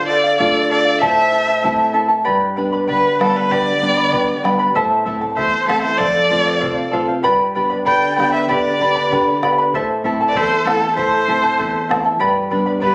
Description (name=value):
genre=andean folk, Andean ensemble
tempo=96 BPM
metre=2/4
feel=straight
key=unclear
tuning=A4 = 437 Hz
part: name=clear erhu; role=melody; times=0.0-12.9 s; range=A4 to G5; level=-20 LUFS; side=equal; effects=none
part: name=breathy large pan pipes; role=second line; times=0.0-1.9, 6.0-12.9 s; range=E4 to D5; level=-27 LUFS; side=equal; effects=none
part: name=charango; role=accompaniment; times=0.0-12.9 s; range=E4 to B5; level=-20 LUFS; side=equal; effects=none
part: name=nylon-string guitar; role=accompaniment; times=0.0-12.9 s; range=E2 to G4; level=-25 LUFS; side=equal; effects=none
part: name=bombo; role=percussion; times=0.4-12.9 s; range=none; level=-30 LUFS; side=equal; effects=none
room=light reverb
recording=recorded on a phone in the room, studio reverb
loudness=-16 LUFS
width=mono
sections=0.0-2.3 A section; 2.3-12.2 B section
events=none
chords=0.0 Dm; 1.0 Am; 2.3 G; 4.8 Am; 6.0 F; 7.3 G; 9.7 Am; 12.2 G